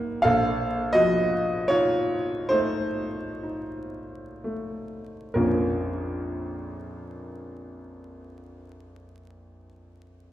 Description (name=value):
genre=classical, romantic nocturne for solo piano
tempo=19-30 BPM (dotted quarters)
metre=6/8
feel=rubato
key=Bb minor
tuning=A4 = 443 Hz
part: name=warm grand piano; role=solo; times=0.0-10.3 s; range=Bb1 to Gb5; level=-24 LUFS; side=equal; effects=none
room=wet recital hall reverb, RT60 1.5 s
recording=heard from further back in the room, vinyl crackle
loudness=-23 LUFS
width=side -13 dB against mid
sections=0.0-5.4 A section; 5.4-10.3 B section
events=slowing down 0.0-5.4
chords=0.2 F7/Bb; 5.4 Bbm